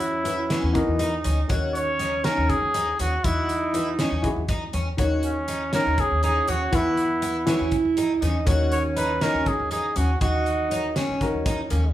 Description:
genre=progressive instrumental, band music in an uneven meter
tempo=241 BPM (eighths)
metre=7/8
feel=straight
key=Eb phrygian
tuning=A4 = 440 Hz
part: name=warm trumpet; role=melody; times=0.0-10.9 s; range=Db4 to Db5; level=-25 LUFS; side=equal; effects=none
part: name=mellow alto saxophone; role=second line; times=0.0-11.9 s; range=Bb3 to E4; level=-28 LUFS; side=right 3 dB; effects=none
part: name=picked twelve-string acoustic guitar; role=arpeggios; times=0.0-11.8 s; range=Db4 to Gb4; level=-30 LUFS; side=left 1 dB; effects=none
part: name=upright bass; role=bass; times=0.0-11.9 s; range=D2 to E2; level=-27 LUFS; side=equal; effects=none
part: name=loose indie drum kit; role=drums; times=0.0-11.8 s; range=hi-hat, kick drum, snare drum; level=-29 LUFS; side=equal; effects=none
part: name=dark grand piano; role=accompaniment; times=0.2-11.6 s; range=Eb3 to Eb5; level=-28 LUFS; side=left 2 dB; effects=none
room=wet large studio reverb, RT60 0.8 s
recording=band playing live in one room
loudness=-21 LUFS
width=side -13 dB against mid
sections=0.0-11.9 A section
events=none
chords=0.0 Esus2; 1.5 Ebm7; 3.2 Esus2; 5.0 Ebm7; 6.7 Esus2; 8.5 Ebm7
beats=0.00 0.25 0.50 0.75 1.00 1.25 | 1.50 1.75 2.00 2.25 2.49 2.74 2.99 | 3.24 3.49 3.74 3.99 4.24 4.49 4.74 | 4.99 5.24 5.48 5.73 5.98 6.23 6.48 | 6.73 6.98 7.23 7.48 7.72 7.97 8.22 | 8.47 8.72 8.97 9.22 9.47 9.72 9.96 | 10.21 10.46 10.71 10.96 11.21 11.46 11.71

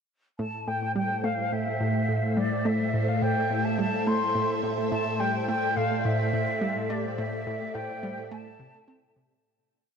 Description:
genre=ambient, sequencer-driven space music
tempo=106 BPM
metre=4/4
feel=straight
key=A minor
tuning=A4 = 441 Hz
part: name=mellow concert flute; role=melody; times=0.4-9.1 s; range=D5 to C6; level=-29 LUFS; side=left 1 dB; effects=shimmer reverb, tape echo
part: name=phased string machine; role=sustained chords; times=0.4-9.4 s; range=A2 to E5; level=-29 LUFS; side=equal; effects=ensemble chorus, phaser, shimmer reverb
part: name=vibraphone with soft mallets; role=arpeggios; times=0.4-9.4 s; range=G4 to A5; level=-40 LUFS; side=moving between left 4 dB and right 3 dB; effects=none
part: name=analog pluck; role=riff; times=0.4-9.4 s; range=A2 to C4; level=-32 LUFS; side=right 1 dB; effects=chorus, shimmer reverb, tape echo
room=wet huge ambient reverb, RT60 9.4 s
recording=none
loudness=-25 LUFS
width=side -6 dB against mid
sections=0.4-9.4 A section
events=fade-out 6.4-9.4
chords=0.4 Am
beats=| 0.39 0.95 1.52 2.09 | 2.65 3.22 3.79 4.35 | 4.92 5.48 6.05 6.62 | 7.18 7.75 8.31 8.88

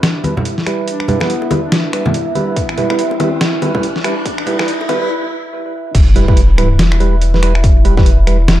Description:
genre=deep dubstep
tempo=142 BPM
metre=4/4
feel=swing 60% on 16ths, half-time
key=E minor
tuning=A4 = 440 Hz
part: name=mellow duduk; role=melody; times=0.0-2.1 s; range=B3 to D4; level=-28 LUFS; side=left 1 dB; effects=dub echo
part: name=dark analog pad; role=sustained chords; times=0.0-8.6 s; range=E4 to E5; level=-24 LUFS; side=left 1 dB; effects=chorus, phaser
part: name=soft dub sub bass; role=bass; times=0.0-8.6 s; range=E1 to B1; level=-12 LUFS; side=equal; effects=high-pass filter
part: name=trip hop sampler-style drum kit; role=drums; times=0.0-8.6 s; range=crash cymbal, finger snaps, hi-hat, snare drum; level=-19 LUFS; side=equal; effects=small room ambience
part: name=riser and impact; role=sound effects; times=1.0-7.6 s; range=none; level=-24 LUFS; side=left 1 dB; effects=none
part: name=percussive organ stab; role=stabs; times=0.2-8.4 s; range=G3 to B4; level=-19 LUFS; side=right 3 dB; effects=chorus, dub echo
part: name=congas and bongos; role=percussion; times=0.2-5.0 s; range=none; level=-20 LUFS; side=left 1 dB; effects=dub echo
part: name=electronic kick drum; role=drums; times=2.6-8.0 s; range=none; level=-11 LUFS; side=equal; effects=small room ambience
room=moderate spring reverb, RT60 1.2 s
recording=dark, warm production, high-pass filter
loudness=-12 LUFS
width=side -14 dB against mid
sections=0.0-5.9 A section; 5.9-8.6 B section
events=build-up 0.0-5.9; filter sweep on synth stab 0.0-5.9; riser 1.0-5.1; break 5.1-5.9; drop 5.9-8.6; impact 5.9-7.6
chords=0.0 Em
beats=0.03 0.45 | 0.88 1.30 1.72 2.14 | 2.57 2.99 3.41 3.83 | 4.26 4.68 5.10 5.52 | 5.95 6.37 6.79 7.21 | 7.64 8.06 8.48

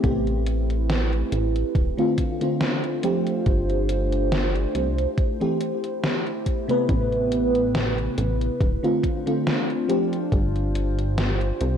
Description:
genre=vaporwave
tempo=70 BPM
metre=4/4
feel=swing 54% on 16ths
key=unclear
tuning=A4 = 440 Hz
part: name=FM electric piano with soft pad layer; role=accompaniment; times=0.0-10.2 s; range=C3 to B4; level=-24 LUFS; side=equal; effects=lush chorus, ping-pong delay
part: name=warbly tape-like pad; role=sustained chords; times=0.0-11.8 s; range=A3 to C5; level=-28 LUFS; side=right 1 dB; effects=chorus, built-in reverb, phaser, vintage 12-bit sampler grit
part: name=chorused synth bass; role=bass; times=0.0-11.8 s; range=D1 to C2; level=-24 LUFS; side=equal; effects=none
part: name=electronic kick drum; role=drums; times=0.0-10.5 s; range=none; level=-23 LUFS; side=equal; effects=overdrive
part: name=gated 80s digital drum machine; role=drums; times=0.0-11.8 s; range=hi-hat, snare drum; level=-28 LUFS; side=equal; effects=gated reverb, gated reverb snare, overdrive
room=moderate plate reverb, RT60 2.0 s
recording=dreamy mix soaked in reverb, cassette tape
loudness=-21 LUFS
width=side -8 dB against mid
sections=0.0-11.8 A section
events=none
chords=0.0 Am9; 1.8 Dm7; 3.0 G9sus4; 4.8 C6; 6.9 Am9; 8.6 Dm7; 9.9 G9sus4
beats=| 0.04 0.89 1.75 2.61 | 3.46 4.32 5.18 6.04 | 6.89 7.75 8.61 9.46 | 10.32 11.18

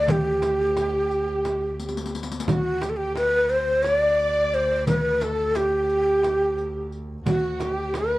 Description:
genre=Turkish makam ensemble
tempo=175 BPM (eighths)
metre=7/8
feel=straight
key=D makam hicaz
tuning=A4 = 441 Hz
part: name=breathy ney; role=melody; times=0.0-8.2 s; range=F#4 to D5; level=-22 LUFS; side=equal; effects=cassette tape
part: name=warm symphonic violin section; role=second line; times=0.0-8.2 s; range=F#4 to D5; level=-33 LUFS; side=equal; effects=cassette tape
part: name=rich double bass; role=drone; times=0.0-8.2 s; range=D2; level=-32 LUFS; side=right 1 dB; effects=cassette tape
part: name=darbuka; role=percussion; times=0.1-8.1 s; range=none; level=-28 LUFS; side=left 1 dB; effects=none
part: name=frame drum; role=percussion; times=0.1-8.1 s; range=none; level=-30 LUFS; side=right 4 dB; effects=none
part: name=riq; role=percussion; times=0.1-8.1 s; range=none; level=-36 LUFS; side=left 4 dB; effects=none
room=wet studio reverb, RT60 0.5 s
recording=home recording on cassette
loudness=-21 LUFS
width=side -17 dB against mid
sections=0.0-8.2 A section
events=drum fill 1.8-2.5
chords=none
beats=| 0.09 0.43 0.77 1.11 1.45 1.79 2.14 | 2.48 2.82 3.16 3.50 3.85 4.19 4.53 | 4.87 5.21 5.56 5.90 6.24 6.58 6.92 | 7.27 7.61 7.95

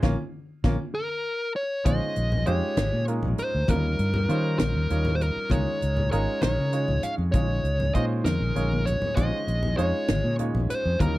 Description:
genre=electric jazz fusion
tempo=66 BPM (dotted quarters)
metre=6/8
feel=straight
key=Bb dorian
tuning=A4 = 441 Hz
part: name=clear grand piano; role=accompaniment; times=0.0-11.2 s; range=G3 to Db5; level=-31 LUFS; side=right 2 dB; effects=none
part: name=fretless electric bass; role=bass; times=0.0-11.2 s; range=Ab1 to Eb3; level=-25 LUFS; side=equal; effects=none
part: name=tight funk drum kit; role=drums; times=0.0-11.1 s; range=hi-hat, kick drum, snare drum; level=-26 LUFS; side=equal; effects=none
part: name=congas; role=percussion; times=0.0-11.1 s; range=none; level=-32 LUFS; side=left 1 dB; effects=none
part: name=dark smooth lead guitar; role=melody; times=0.9-11.2 s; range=Bb4 to F5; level=-28 LUFS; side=equal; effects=overdrive, slapback echo
room=little or no reverb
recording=dry, close 1970s-style studio recording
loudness=-23 LUFS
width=side -17 dB against mid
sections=0.0-1.9 A section; 1.9-11.2 B section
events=band accent 0.0-1.9; drum fill 0.9-1.9, 8.4-9.2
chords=0.0 Bbm; 1.9 Bbm11; 3.7 Eb9; 5.5 Db6; 7.3 Bbm11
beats=| 0.04 0.95 | 1.86 2.77 | 3.69 4.60 | 5.52 6.43 | 7.34 8.26 | 9.18 10.09 | 11.00

